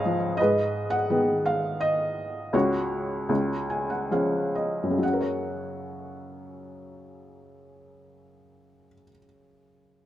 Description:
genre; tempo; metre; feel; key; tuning
classical, lyrical solo piano; 63-85 BPM; 3/4; rubato; F# major; A4 = 440 Hz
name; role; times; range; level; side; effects
felt-muted upright piano; solo; 0.0-10.1 s; C#2 to G#5; -24 LUFS; equal; none
room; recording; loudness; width
moderate recital hall reverb, RT60 1.8 s; close, detailed microphones; -23 LUFS; side -12 dB against mid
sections
0.4-5.0 A section; 5.0-10.1 B section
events
slowing down 0.4-5.0; felt piano fill 3.3-5.0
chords
0.4 G#m; 2.5 C#sus4; 3.3 C#; 5.0 F#

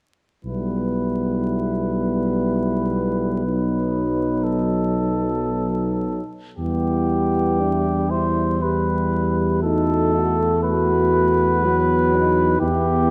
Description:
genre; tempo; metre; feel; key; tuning
classical, hymn-like piece for brass band; 60 BPM; 3/4; rubato; E minor; A4 = 439 Hz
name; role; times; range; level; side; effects
mellow cornet; melody; 0.4-13.1 s; G4 to C5; -27 LUFS; equal; none
dark trombone; accompaniment; 0.4-13.1 s; F#3 to B3; -28 LUFS; equal; none
dark tuba; bass; 0.4-13.1 s; B1 to E2; -26 LUFS; equal; none
mellow French horn section; second line; 0.5-13.1 s; B3 to F#4; -28 LUFS; equal; none
mellow euphonium; accompaniment; 0.5-13.1 s; B3 to G4; -28 LUFS; equal; none
room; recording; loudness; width
moderate concert hall reverb, RT60 1.9 s; vinyl crackle; -21 LUFS; mono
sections
0.4-6.6 A section; 6.6-13.1 B section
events
none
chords
0.4 Em/B; 3.5 B7; 6.6 Em; 9.6 B5/E

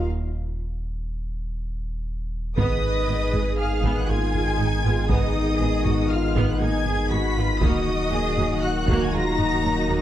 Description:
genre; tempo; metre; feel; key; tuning
cinematic, hybrid orchestral and electronic film score; 119 BPM; 5/4; straight; unclear; A4 = 440 Hz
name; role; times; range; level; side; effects
warm symphonic violin section; melody; 0.0-10.0 s; Eb6 to Cb7; -31 LUFS; left 2 dB; none
dark French horn section; sustained chords; 0.0-10.0 s; Bb3 to Eb4; -29 LUFS; left 6 dB; none
warm sub bass; bass; 0.0-10.0 s; Eb1 to Ab1; -27 LUFS; equal; none
rich symphonic violin section; second line; 2.6-10.0 s; Eb5 to Cb6; -31 LUFS; left 2 dB; none
rich symphonic viola section; accompaniment; 2.6-10.0 s; Gb3 to Ab4; -30 LUFS; right 2 dB; none
mellow trombone section; sustained chords; 2.6-10.0 s; Eb3 to Ab3; -31 LUFS; right 2 dB; none
rich symphonic cello section; bass; 2.6-10.0 s; Eb4 to Cb5; -30 LUFS; right 2 dB; none
warm symphonic double bass section; bass; 2.6-10.0 s; Ab1 to Eb2; -28 LUFS; right 3 dB; none
taiko ensemble; drums; 2.6-9.6 s; none; -28 LUFS; equal; none
room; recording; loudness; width
moderate scoring stage reverb, RT60 1.5 s; dark, warm production; -21 LUFS; side -12 dB against mid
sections
0.0-2.6 A section; 2.6-10.0 B section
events
break 0.1-2.6; drum fill 1.8-2.6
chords
0.0 N.C.; 2.6 Abm; 7.6 Ebm

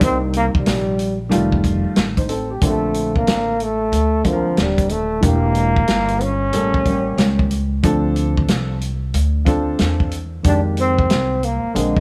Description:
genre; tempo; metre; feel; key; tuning
hip hop, jazz-hop; 92 BPM; 4/4; swing 63% on 16ths; Bb major; A4 = 437 Hz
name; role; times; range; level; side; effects
breathy trombone; melody; 0.0-12.0 s; F3 to D4; -22 LUFS; equal; none
dark upright piano; accompaniment; 0.0-12.0 s; Bb2 to C5; -24 LUFS; equal; none
upright bass; bass; 0.0-12.0 s; Eb1 to F2; -23 LUFS; equal; none
vintage drum kit; drums; 0.0-12.0 s; hi-hat, kick drum, snare drum; -22 LUFS; equal; none
room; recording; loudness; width
light reverb, small room reverb; none; -18 LUFS; mono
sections
0.0-2.6 A section; 2.6-12.0 B section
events
trombone solo 0.0-2.6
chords
0.0 Cm7; 1.3 F9; 2.6 Bbmaj9; 5.2 Em7b5; 6.5 A7b9; 7.8 Dm7; 10.4 Fm11

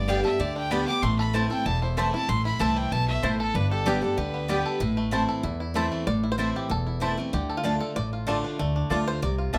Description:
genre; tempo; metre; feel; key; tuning
bluegrass; 190 BPM; 4/4; straight; A minor; A4 = 440 Hz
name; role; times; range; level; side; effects
bluegrass banjo; melody; 0.0-9.6 s; A3 to E5; -36 LUFS; equal; none
clear fiddle; melody; 0.0-5.1 s; G4 to D6; -33 LUFS; equal; none
picked steel-string acoustic guitar; accompaniment; 0.0-9.6 s; E2 to G4; -30 LUFS; equal; none
upright bass; bass; 0.0-9.6 s; E1 to E2; -31 LUFS; equal; none
mandolin; stabs; 0.1-9.6 s; A3 to A5; -32 LUFS; equal; none
room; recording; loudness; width
light reverb; none; -26 LUFS; mono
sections
0.0-6.1 A section; 6.1-9.6 B section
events
five-string banjo solo 6.1-9.6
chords
0.0 G; 1.0 Am; 3.6 G; 4.8 Am; 7.3 Dm

